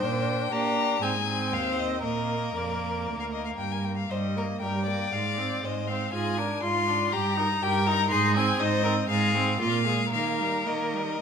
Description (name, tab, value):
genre	quick classical-period movement for string quartet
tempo	119 BPM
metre	4/4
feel	uneven beats, rubato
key	Eb major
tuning	A4 = 439 Hz
part	rich violin	melody	0.0-11.2 s	D5 to C6	-29 LUFS	left 8 dB	none
part	clear violin	second line	0.0-11.2 s	F4 to D5	-31 LUFS	left 2 dB	none
part	rich viola	accompaniment	0.0-11.2 s	G3 to G4	-31 LUFS	right 3 dB	none
part	clear cello	bass	0.0-11.1 s	D2 to Bb3	-30 LUFS	right 4 dB	none
room	wet recital hall reverb, RT60 1.4 s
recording	minimal, uncompressed stereo recording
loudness	-24 LUFS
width	side -6 dB against mid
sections	0.0-11.2 A section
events	none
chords	0.0 Gm/Bb; 1.0 Ab; 2.0 Bb; 4.1 Eb/G; 5.1 Fm/Ab; 6.1 Bb9/Ab; 7.1 Eb/G; 8.1 Ab; 9.1 Fm/Ab; 9.6 Bb5; 10.1 Eb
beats	| 0.03 0.52 1.02 1.52 | 2.04 2.56 3.07 3.59 | 4.11 4.62 5.13 5.64 | 6.14 6.63 7.13 7.62 | 8.12 8.60 9.10 9.60 | 10.13 10.67 11.20